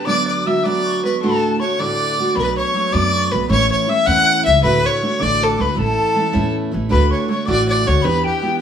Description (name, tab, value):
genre	celtic folk, Celtic jig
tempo	106 BPM (dotted quarters)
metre	6/8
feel	straight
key	unclear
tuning	A4 = 440 Hz
part	dark fiddle	melody	0.0-8.6 s	G4 to F#5	-18 LUFS	left 1 dB	plate reverb
part	mid whistle	second line	0.0-8.6 s	G5 to F#6	-23 LUFS	left 4 dB	none
part	picked steel-string acoustic guitar	accompaniment	0.0-8.6 s	D2 to G4	-20 LUFS	right 3 dB	none
part	upright bass	bass	2.4-8.2 s	A1 to F#2	-20 LUFS	left 1 dB	none
room	moderate studio reverb, RT60 0.5 s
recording	none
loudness	-15 LUFS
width	side -8 dB against mid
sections	0.0-6.9 A section; 6.9-8.6 A section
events	none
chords	0.1 Bm/D; 1.2 D; 2.4 Bm7; 3.5 A; 4.6 D; 5.8 A; 6.9 D; 8.0 Em7